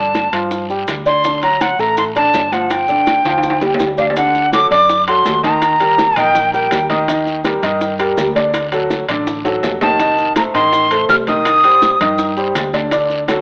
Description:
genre	latin, salsa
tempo	164 BPM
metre	4/4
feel	straight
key	unclear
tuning	A4 = 440 Hz
part	breathy bright jazz flute	melody	0.0-6.9, 9.8-12.3 s	F5 to F6	-16 LUFS	equal	cassette tape
part	bright upright piano	accompaniment	0.0-13.4 s	D3 to Eb5	-20 LUFS	equal	cassette tape
part	hollow-body short-scale fingered electric bass	bass	0.0-13.4 s	F1 to G2	-32 LUFS	equal	none
part	bongos	percussion	0.1-13.4 s	none	-27 LUFS	equal	none
part	congas	percussion	0.1-13.4 s	none	-32 LUFS	equal	none
part	maracas	percussion	0.1-13.4 s	none	-37 LUFS	equal	none
part	timbales	percussion	0.1-13.4 s	none	-26 LUFS	equal	none
part	guiro	percussion	0.2-13.4 s	none	-32 LUFS	equal	none
room	wet spring reverb, RT60 1.5 s, small room ambience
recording	home recording on cassette, AM radio sound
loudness	-15 LUFS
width	mono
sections	0.0-4.2 A section; 4.2-13.4 B section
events	drum fill 3.2-4.2, 9.5-10.0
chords	0.0 Gsus2; 1.2 D; 2.7 G5; 4.2 D; 5.6 Eb; 7.1 Ebmaj7; 8.5 D; 10.0 F7; 11.5 Cm

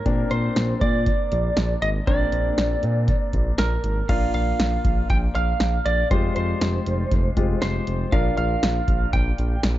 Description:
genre	synth-pop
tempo	119 BPM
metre	4/4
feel	straight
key	unclear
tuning	A4 = 440 Hz
part	lightly driven lead guitar	melody	0.0-9.6 s	Bb4 to G5	-26 LUFS	right 2 dB	dub echo
part	clear grand piano	accompaniment	0.1-9.8 s	Ab3 to Bb4	-29 LUFS	left 5 dB	none
part	smooth gliding synth bass	bass	0.1-9.8 s	F1 to Bb2	-24 LUFS	equal	none
part	electro analog drum machine	drums	0.1-9.8 s	crash cymbal, hi-hat, kick drum, snare drum	-23 LUFS	equal	none
room	light reverb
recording	echo-heavy mix, nothing above 7.6 kHz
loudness	-19 LUFS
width	side -14 dB against mid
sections	0.0-4.1 A section; 4.1-9.8 B section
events	none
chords	0.1 Bbadd9; 4.1 Bb; 6.1 Fmadd9; 8.1 Bb

